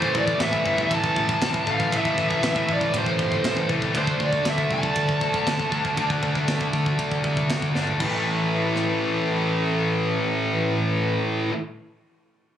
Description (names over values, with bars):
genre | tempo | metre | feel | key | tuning
heavy metal | 118 BPM | 4/4 | straight | unclear | A4 = 440 Hz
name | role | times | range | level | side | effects
bluesy overdriven lead guitar | melody | 0.0-7.5 s | C5 to A5 | -26 LUFS | equal | distortion, ping-pong delay
heavy high-gain guitar | riff | 0.0-11.5 s | A2 to D4 | -27 LUFS | left 9 dB | distortion
high-gain distorted guitar | riff | 0.0-11.5 s | A2 to D4 | -26 LUFS | right 6 dB | distortion
fuzz picked electric bass | bass | 0.0-11.2 s | G1 to D2 | -28 LUFS | left 1 dB | overdrive
tight metal drum kit | drums | 0.0-8.9 s | crash cymbal, kick drum, ride cymbal, rim click, snare drum, toms | -29 LUFS | equal | none
room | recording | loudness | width
small room ambience | recorded on a phone in the room, club reverb | -21 LUFS | side -10 dB against mid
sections
0.0-8.0 A section; 8.0-12.1 B section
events
drum fill 7.8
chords
0.0 Am; 4.0 D5; 8.0 A5